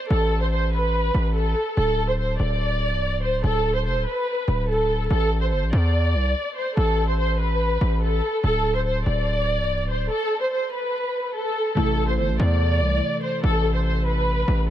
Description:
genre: hip hop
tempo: 144 BPM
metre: 4/4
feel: half-time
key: A minor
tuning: A4 = 440 Hz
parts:
  - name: dark studio violin section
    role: melody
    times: 0.0-14.6 s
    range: A4 to D5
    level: -24 LUFS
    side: equal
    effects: low-pass filter, dub echo
  - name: distorted 808-style bass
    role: bass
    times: 0.1-14.7 s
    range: C1 to E2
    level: -22 LUFS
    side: equal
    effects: distortion
  - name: glassy digital keys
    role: accompaniment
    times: 11.8-14.7 s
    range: C3 to A4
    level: -28 LUFS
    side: equal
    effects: chorus, low-pass filter, dub echo
room: small room reverb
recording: echo-heavy mix, vinyl crackle, nothing above 10.7 kHz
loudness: -20 LUFS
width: side -12 dB against mid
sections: 0.0-11.8 A section; 11.8-14.7 B section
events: break 10.1-11.8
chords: 0.0 N.C.; 1.8 D5; 5.1 A5; 8.4 D5; 11.8 Am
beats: | 0.10 0.52 0.94 1.35 | 1.77 2.19 2.60 3.02 | 3.44 3.85 4.27 4.69 | 5.10 5.52 5.94 6.35 | 6.77 7.19 7.60 8.02 | 8.44 8.85 9.27 9.69 | 10.10 10.52 10.94 11.35 | 11.77 12.19 12.60 13.02 | 13.44 13.85 14.27 14.69

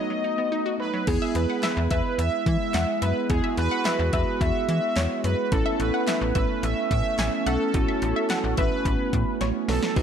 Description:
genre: synth-pop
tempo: 108 BPM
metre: 4/4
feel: straight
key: E major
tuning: A4 = 441 Hz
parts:
  - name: analog synth brass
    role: melody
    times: 0.0-10.0 s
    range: F#4 to E5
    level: -28 LUFS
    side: right 2 dB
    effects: chorus, tape echo
  - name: bell-like tine electric piano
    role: accompaniment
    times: 0.0-10.0 s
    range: B3 to B4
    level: -31 LUFS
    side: right 6 dB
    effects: none
  - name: chorused pulse-width pad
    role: sustained chords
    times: 0.0-10.0 s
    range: F#3 to F#4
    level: -30 LUFS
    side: left 1 dB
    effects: none
  - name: analog pluck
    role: arpeggios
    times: 0.0-1.0 s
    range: F#3 to F#4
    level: -33 LUFS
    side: left 1 dB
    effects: chorus, tape echo
  - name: slap-like FM bass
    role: bass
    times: 1.1-10.0 s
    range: A1 to E3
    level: -26 LUFS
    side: left 1 dB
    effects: none
  - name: deep house drum kit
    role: drums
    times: 1.1-10.0 s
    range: crash cymbal, handclaps, hi-hat, kick drum, snare drum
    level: -28 LUFS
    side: left 1 dB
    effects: none
  - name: wide unison pluck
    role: second line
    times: 1.2-9.8 s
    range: C#5 to G#5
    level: -32 LUFS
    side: left 2 dB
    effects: tape echo
room: light reverb, digital ambience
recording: none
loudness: -22 LUFS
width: side -8 dB against mid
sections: 0.0-1.1 A section; 1.1-10.0 B section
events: break 0.0-1.1; drum fill 9.4-10.0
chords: 0.0 B7; 1.1 E; 5.5 Aadd9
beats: 0.52 | 1.07 1.63 2.19 2.74 | 3.30 3.85 4.41 4.96 | 5.52 6.08 6.63 7.19 | 7.74 8.30 8.85 9.41 | 9.96

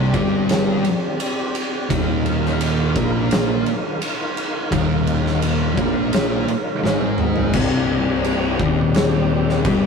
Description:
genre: stoner and doom metal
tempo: 85 BPM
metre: 4/4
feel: straight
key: C minor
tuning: A4 = 439 Hz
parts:
  - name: tonewheel organ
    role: sustained chords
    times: 0.0-9.9 s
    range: C4 to F5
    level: -27 LUFS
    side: equal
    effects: slow rotary speaker, chorus vibrato
  - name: thick fuzz guitar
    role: riff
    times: 0.0-9.9 s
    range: C2 to Bb3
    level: -22 LUFS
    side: left 8 dB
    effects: distortion
  - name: thick fuzz guitar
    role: riff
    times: 0.0-7.5 s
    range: C2 to Bb3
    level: -23 LUFS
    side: right 9 dB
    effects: distortion
  - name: fuzz picked electric bass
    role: bass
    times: 0.0-9.9 s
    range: C1 to Bb1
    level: -25 LUFS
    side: equal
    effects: overdrive
  - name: oversized low-tuned drum kit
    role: drums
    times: 0.1-9.8 s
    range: crash cymbal, kick drum, ride cymbal, snare drum, toms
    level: -22 LUFS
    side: equal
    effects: none
room: moderate studio reverb, RT60 0.6 s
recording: rough rehearsal-room recording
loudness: -17 LUFS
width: side -5 dB against mid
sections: 0.0-7.5 A section; 7.5-9.9 B section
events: drum fill 6.8-7.5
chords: 0.0 C5; 1.9 Eb5; 7.5 Cm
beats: 0.49 1.20 | 1.90 2.61 3.31 4.02 | 4.72 5.43 6.13 6.84 | 7.54 8.24 8.95 9.65

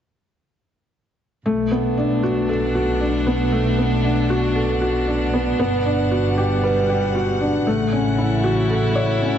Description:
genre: piano and strings electronica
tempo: 116 BPM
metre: 4/4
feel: straight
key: B minor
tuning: A4 = 440 Hz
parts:
  - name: warm string quartet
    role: sustained chords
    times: 1.5-9.4 s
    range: B2 to F#5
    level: -24 LUFS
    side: equal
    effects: none
  - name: felt-muted upright piano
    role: riff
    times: 1.5-9.4 s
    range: A3 to C#5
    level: -20 LUFS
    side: equal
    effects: digital delay
  - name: rich studio double bass section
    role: bass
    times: 1.5-9.4 s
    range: G1 to B1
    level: -24 LUFS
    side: right 1 dB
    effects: none
room: moderate concert hall reverb, RT60 1.8 s, studio reverb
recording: nothing above 7.8 kHz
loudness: -17 LUFS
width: side -9 dB against mid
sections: 1.5-9.4 A section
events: none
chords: 1.5 Bm7; 5.6 Gmaj7; 7.7 F#m7/A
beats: | 1.46 1.98 2.49 3.01 | 3.53 4.04 4.56 5.08 | 5.59 6.11 6.63 7.15 | 7.66 8.18 8.70 9.22

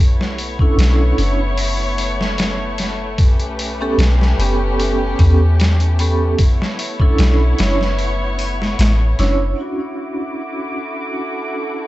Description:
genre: trip hop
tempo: 75 BPM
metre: 4/4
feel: straight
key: B minor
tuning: A4 = 439 Hz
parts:
  - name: muted studio violin section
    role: sustained chords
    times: 0.0-11.9 s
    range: A3 to D6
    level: -24 LUFS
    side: left 2 dB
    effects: low-pass filter
  - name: soft 808-style bass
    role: bass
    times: 0.0-9.5 s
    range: F#1 to E2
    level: -16 LUFS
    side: equal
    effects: tube saturation
  - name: trip hop sampler-style drum kit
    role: drums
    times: 0.2-9.4 s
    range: hi-hat, kick drum, snare drum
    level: -18 LUFS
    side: equal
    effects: none
  - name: vibraphone with soft mallets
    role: accompaniment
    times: 0.6-11.9 s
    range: B3 to C#5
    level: -22 LUFS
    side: right 2 dB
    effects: tremolo, tape echo
  - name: wind-like tuned noise texture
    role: texture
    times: 10.5-11.9 s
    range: A4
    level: -31 LUFS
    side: right 5 dB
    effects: built-in reverb
room: digital ambience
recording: nothing above 8.0 kHz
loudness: -14 LUFS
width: side -16 dB against mid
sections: 0.0-9.6 A section; 9.6-11.9 B section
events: filter sweep on violin section 9.6-11.9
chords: 0.0 Bm11; 3.2 A9; 6.4 Bm11; 9.6 Dmaj9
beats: 0.79 1.58 2.38 | 3.19 3.98 4.79 5.58 | 6.38 7.18 7.99 8.79 | 9.59 10.38 11.19

